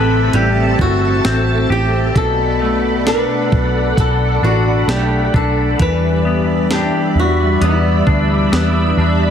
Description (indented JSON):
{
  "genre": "dream pop",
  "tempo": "66 BPM",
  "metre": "4/4",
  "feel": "straight",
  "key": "E minor",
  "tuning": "A4 = 440 Hz",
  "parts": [
    { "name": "flamenco guitar", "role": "melody", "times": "0.0-8.9 s", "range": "E4 to B4", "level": "-20 LUFS", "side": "left 1 dB", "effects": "tape echo, shimmer reverb" },
    { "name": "string machine, full ensemble", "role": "sustained chords", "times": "0.0-9.3 s", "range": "G3 to B5", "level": "-19 LUFS", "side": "right 1 dB", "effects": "ensemble chorus, shimmer reverb" },
    { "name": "clean electric guitar", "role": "arpeggios", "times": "0.0-9.3 s", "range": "A2 to B4", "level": "-20 LUFS", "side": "left 3 dB", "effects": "lush chorus, tape echo, shimmer reverb" },
    { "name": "vintage muted picked electric bass", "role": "bass", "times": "0.0-9.3 s", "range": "G1 to E2", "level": "-17 LUFS", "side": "right 1 dB", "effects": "none" },
    { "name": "crisp 8-bit digital drum machine", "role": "drums", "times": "0.3-8.7 s", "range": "hi-hat, kick drum, snare drum", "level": "-19 LUFS", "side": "right 1 dB", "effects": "none" }
  ],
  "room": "moderate studio reverb, RT60 0.9 s",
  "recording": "heavily compressed radio sound",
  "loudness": "-12 LUFS",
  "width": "side -8 dB against mid",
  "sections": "0.0-9.3 A section",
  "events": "none",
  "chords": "0.0 Am9; 2.2 Bm7; 5.8 Em7"
}